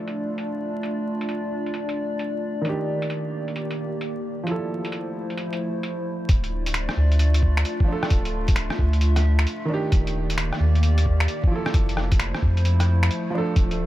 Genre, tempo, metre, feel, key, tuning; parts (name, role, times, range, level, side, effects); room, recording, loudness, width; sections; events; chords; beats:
future garage; 132 BPM; 4/4; swing 66% on 16ths; A4 = 440 Hz
warm upright piano; accompaniment; 0.0-13.9 s; Eb3 to A4; -30 LUFS; right 2 dB; sidechain pumping, low-pass filter, tape echo
warbly tape-like pad; sustained chords; 0.0-13.9 s; Eb3 to E5; -28 LUFS; equal; chorus, built-in reverb, sidechain pumping
lo-fi sampler-style drum kit; drums; 0.1-13.8 s; finger snaps, hi-hat, rim click; -30 LUFS; equal; low-pass filter on hats, low-pass filter on snare, low-pass filter on room
soft dub sub bass; bass; 6.3-13.9 s; D1 to F2; -20 LUFS; equal; sidechain pumping
electronic kick drum; drums; 6.3-13.7 s; -19 LUFS; equal
light reverb; dark, warm production, vinyl crackle; -21 LUFS; side -15 dB against mid
0.0-6.3 A section; 6.3-13.9 B section
0.0 Dm; 2.7 Ebmaj7; 4.5 Fmaj7; 6.3 Dm; 9.9 Ebmaj7; 11.7 Fmaj7
0.38 | 0.83 1.29 1.74 2.20 | 2.65 3.11 3.56 4.01 | 4.47 4.92 5.38 5.83 | 6.29 6.74 7.20 7.65 | 8.11 8.56 9.02 9.47 | 9.93 10.38 10.83 11.29 | 11.74 12.20 12.65 13.11 | 13.56